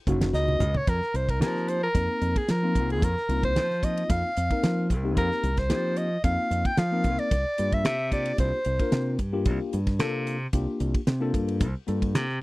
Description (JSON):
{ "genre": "electric jazz fusion", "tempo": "112 BPM", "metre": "4/4", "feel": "straight", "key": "unclear", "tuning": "A4 = 441 Hz", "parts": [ { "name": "barky tine electric piano", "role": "accompaniment", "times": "0.1-12.2 s", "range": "Bb3 to Bb4", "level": "-31 LUFS", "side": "left 3 dB", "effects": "overdrive, phaser" }, { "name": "modern bright fingered electric bass", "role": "bass", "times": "0.1-12.4 s", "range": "Gb1 to F3", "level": "-27 LUFS", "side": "equal", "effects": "none" }, { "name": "damped 70s drum kit", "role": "drums", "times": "0.1-12.4 s", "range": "hi-hat, kick drum, ride cymbal, snare drum, toms", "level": "-27 LUFS", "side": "equal", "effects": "none" }, { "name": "congas", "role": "percussion", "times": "0.1-0.9 s", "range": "none", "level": "-31 LUFS", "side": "right 2 dB", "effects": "none" }, { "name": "warm soprano saxophone", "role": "melody", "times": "0.3-9.2 s", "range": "Ab4 to G5", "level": "-28 LUFS", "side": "equal", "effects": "none" } ], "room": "little or no reverb", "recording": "dry, close 1970s-style studio recording", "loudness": "-23 LUFS", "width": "side -20 dB against mid", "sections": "0.9-12.4 A section", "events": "drum fill 0.3-0.9", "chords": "0.0 Ab9sus4 (rootless); 0.9 F9sus4; 7.3 C9sus4", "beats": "0.34 | 0.88 1.41 1.95 2.49 | 3.02 3.56 4.09 4.63 | 5.17 5.71 6.24 6.78 | 7.32 7.85 8.39 8.93 | 9.46 10.00 10.54 11.07 | 11.61 12.15" }